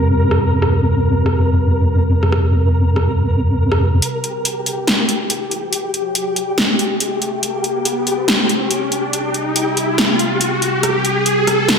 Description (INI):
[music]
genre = deep dubstep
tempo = 141 BPM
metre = 4/4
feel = swing 55% on 16ths, half-time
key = unclear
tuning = A4 = 441 Hz
[part]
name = deep dark ambient pad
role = sustained chords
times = 0.0-11.8 s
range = C4 to G4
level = -24 LUFS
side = equal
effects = chorus, built-in reverb, vintage 12-bit sampler grit
[part]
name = deep soft wobble bass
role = bass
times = 0.0-4.0 s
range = F2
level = -14 LUFS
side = equal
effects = chorus
[part]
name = flickering grainy texture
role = texture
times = 0.0-11.8 s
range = G4 to Bb4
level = -22 LUFS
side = left 2 dB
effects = built-in reverb
[part]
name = deep house drum kit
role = drums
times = 0.3-11.8 s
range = hi-hat, rim click, snare drum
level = -18 LUFS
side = equal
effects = overdrive
[part]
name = riser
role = sound effects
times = 5.5-11.8 s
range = none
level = -21 LUFS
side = right 1 dB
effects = none
[sound]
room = wet lush hall reverb, RT60 2.1 s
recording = dreamy mix soaked in reverb, low-pass filter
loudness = -14 LUFS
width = side -6 dB against mid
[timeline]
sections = 0.0-4.0 A section; 4.0-11.8 B section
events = build-up 4.0-11.8; filter sweep on ambient pad 4.0-11.8; riser 5.5-11.8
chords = 0.0 F5; 4.0 C5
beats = 0.19 | 0.62 1.05 1.47 1.90 | 2.32 2.75 3.17 3.60 | 4.02 4.45 4.88 5.30 | 5.73 6.15 6.58 7.00 | 7.43 7.85 8.28 8.71 | 9.13 9.56 9.98 10.41 | 10.83 11.26 11.68